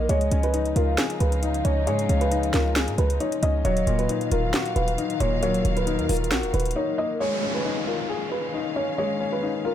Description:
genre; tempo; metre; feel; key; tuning
hip hop, trap; 135 BPM; 4/4; half-time; unclear; A4 = 441 Hz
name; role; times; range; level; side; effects
felt-muted upright piano; melody; 0.0-9.7 s; Bb4 to Eb5; -28 LUFS; right 2 dB; low-pass filter, tape echo
hollow clarinet-like synth lead; second line; 0.0-7.2 s; Bb4 to F5; -32 LUFS; right 2 dB; chorus, phaser, tape echo
dark concert grand piano; accompaniment; 0.0-9.7 s; Bb2 to Ab4; -28 LUFS; left 6 dB; low-pass filter
warm symphonic string section; sustained chords; 0.0-9.7 s; Db3 to F5; -34 LUFS; left 2 dB; none
short 808-style bass; bass; 0.0-6.8 s; Eb1 to Ab2; -24 LUFS; right 1 dB; none
trap drum kit; drums; 0.1-6.8 s; hi-hat, snare drum; -28 LUFS; right 1 dB; none
downlifter; sound effects; 7.2-9.7 s; none; -32 LUFS; right 1 dB; none
room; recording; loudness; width
small room ambience; none; -21 LUFS; side -10 dB against mid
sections
0.0-7.2 A section; 7.2-9.7 B section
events
drums muted 6.8-7.2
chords
0.1 Dbadd9; 3.6 Ebmadd9; 7.2 Dbadd9

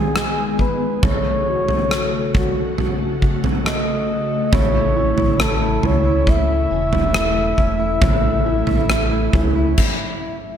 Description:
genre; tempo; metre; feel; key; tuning
pop ballad; 69 BPM; 4/4; straight; unclear; A4 = 438 Hz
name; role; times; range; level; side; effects
breathy flugelhorn; melody; 0.0-10.6 s; G#4 to E5; -23 LUFS; left 1 dB; tape echo
dark baby grand piano; accompaniment; 0.0-9.8 s; G#3 to A4; -24 LUFS; equal; ensemble chorus
ethereal airy pad; sustained chords; 0.0-9.8 s; C#3 to G#4; -25 LUFS; equal; ensemble chorus, built-in reverb
huge arena drum kit; drums; 0.2-10.0 s; crash cymbal, kick drum, rim click, toms; -20 LUFS; equal; none
direct-recorded clean electric guitar; arpeggios; 4.5-10.4 s; A2 to E4; -30 LUFS; right 5 dB; lush chorus
sub bass with octave; bass; 4.5-9.7 s; E1 to C#2; -22 LUFS; equal; none
room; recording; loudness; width
moderate plate reverb, RT60 2.4 s; dreamy mix soaked in reverb; -16 LUFS; side -9 dB against mid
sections
0.0-10.6 A section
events
stop 9.8-10.6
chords
0.0 G#m; 1.0 F#m; 4.5 A

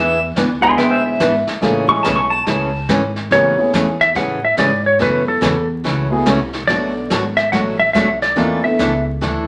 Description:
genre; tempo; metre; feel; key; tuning
country, western swing; 142 BPM; 4/4; swing 65% on 8ths; A major; A4 = 440 Hz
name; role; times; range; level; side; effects
pedal steel guitar; second line; 0.0-2.9 s; C5 to C#6; -18 LUFS; equal; none
picked steel-string acoustic guitar; accompaniment; 0.0-9.4 s; B2 to A4; -21 LUFS; equal; none
upright bass; bass; 0.0-9.5 s; G#1 to A2; -27 LUFS; equal; none
vintage brush drum kit; drums; 0.4-9.5 s; brushed snare drum, hi-hat, kick drum, snare drum; -28 LUFS; equal; none
dark upright piano; accompaniment; 0.6-9.0 s; G#3 to Bb4; -23 LUFS; equal; none
clean lap steel guitar; melody; 3.3-9.0 s; A4 to F#5; -18 LUFS; equal; none
room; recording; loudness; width
wet studio reverb, RT60 0.6 s; vinyl crackle; -16 LUFS; mono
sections
0.0-3.3 A section; 3.3-9.5 B section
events
pedal steel guitar solo 0.0-3.3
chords
0.0 E7; 1.6 Amaj7; 3.3 Amaj9; 5.0 F#m11; 6.7 Bm7; 8.4 E7sus4

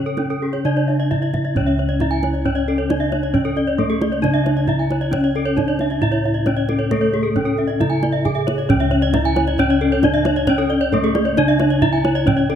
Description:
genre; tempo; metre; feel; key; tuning
Balinese gamelan; 134 BPM; 4/4; straight; C# pelog; A4 = 439 Hz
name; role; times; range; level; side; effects
gamelan-type bronze metallophone; melody; 0.0-12.6 s; A3 to G#4; -20 LUFS; left 1 dB; none
gamelan-type bronze metallophone; arpeggios; 0.0-12.6 s; G#4 to G#5; -25 LUFS; left 6 dB; slapback echo
gamelan-type bossed gongs; bass; 0.0-12.6 s; C#2 to A4; -21 LUFS; equal; none
gamelan-type bronze metallophone; arpeggios; 0.1-12.5 s; G#4 to G#5; -26 LUFS; right 6 dB; none
kendang; percussion; 0.2-12.6 s; none; -25 LUFS; right 3 dB; none
room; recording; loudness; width
light reverb; close, detailed microphones; -16 LUFS; side -9 dB against mid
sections
0.0-1.6 A section; 1.6-12.6 B section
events
none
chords
none

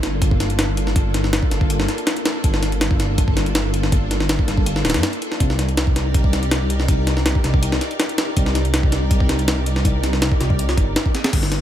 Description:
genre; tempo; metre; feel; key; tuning
drum and bass, jungle; 162 BPM; 4/4; straight; unclear; A4 = 439 Hz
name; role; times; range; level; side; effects
soft string machine; sustained chords; 0.0-11.6 s; Bb3 to D5; -26 LUFS; equal; ensemble chorus
dark detuned saw bass; bass; 0.0-11.6 s; D1 to G2; -21 LUFS; equal; none
jungle sampler-style drum kit; drums; 0.0-11.6 s; crash cymbal, hi-hat, kick drum, snare drum; -19 LUFS; equal; none
room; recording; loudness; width
digital ambience; none; -16 LUFS; side -11 dB against mid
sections
0.0-11.3 A section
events
drop 0.0-11.3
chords
0.0 Gm7; 5.4 Cm7

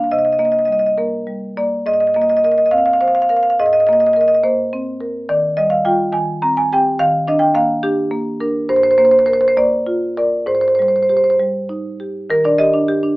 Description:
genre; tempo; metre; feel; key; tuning
classical, contemporary piece for solo marimba; 70 BPM (dotted quarters); 6/8; straight; Eb major from 5.3 s; A4 = 442 Hz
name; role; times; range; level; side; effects
marimba with medium mallets; solo; 0.0-13.2 s; G2 to Bb5; -13 LUFS; equal; none
room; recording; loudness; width
moderate studio ambience, RT60 0.5 s; AM radio sound; -13 LUFS; side -21 dB against mid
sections
0.0-12.3 A section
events
none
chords
0.1 Cm7; 1.9 Abadd9; 5.3 Ebadd9; 6.1 Eb6; 7.0 Ebmaj7; 8.7 Gm7; 10.5 Abmaj7; 12.3 Ebmaj7

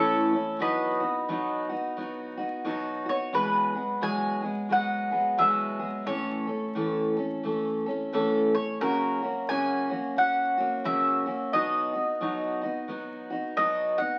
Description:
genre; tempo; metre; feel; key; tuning
country; 88 BPM; 4/4; swing 60% on 8ths; E major; A4 = 437 Hz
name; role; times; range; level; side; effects
mandolin; melody; 0.0-14.2 s; A4 to G#5; -29 LUFS; equal; none
picked steel-string acoustic guitar; accompaniment; 0.0-14.2 s; E2 to A4; -31 LUFS; equal; none
room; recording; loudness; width
moderate club reverb, RT60 0.6 s; very old 78 rpm record, vinyl crackle; -28 LUFS; mono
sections
0.0-3.3 A section; 3.3-14.2 B section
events
none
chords
0.0 A; 0.6 B; 3.3 Eadd9; 6.1 A; 8.8 F#; 11.5 B

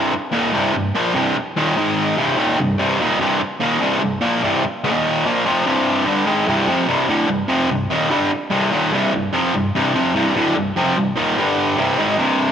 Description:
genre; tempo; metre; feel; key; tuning
rock; 147 BPM; 4/4; straight; C minor; A4 = 441 Hz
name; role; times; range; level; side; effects
distorted electric guitar; solo; 0.0-12.5 s; C2 to Bb3; -16 LUFS; equal; overdrive
room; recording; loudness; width
wet plate reverb, RT60 3.0 s; bright 1980s-style digital production; -16 LUFS; side -8 dB against mid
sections
0.0-6.5 A section; 6.5-12.5 B section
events
none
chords
0.0 Cm; 1.8 Ab5; 2.2 Cm; 4.8 Eb5; 5.2 Cm; 11.4 G5; 11.8 Cm

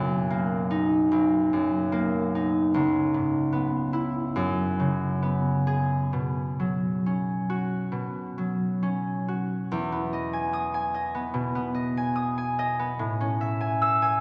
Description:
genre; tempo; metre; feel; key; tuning
classical, solo harp piece; 64-76 BPM; 4/4; rubato; B major, E major from 9.7 s; A4 = 441 Hz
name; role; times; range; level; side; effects
concert harp; solo; 0.0-14.2 s; B1 to E6; -26 LUFS; equal; none
room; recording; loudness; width
wet church reverb, RT60 2.9 s; none; -26 LUFS; mono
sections
0.0-9.7 A section; 9.7-14.2 B section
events
none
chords
0.0 Bmaj7; 2.8 C#m9; 4.4 F#9sus4; 6.1 Bsus2; 9.7 Emaj7; 13.0 Amaj7

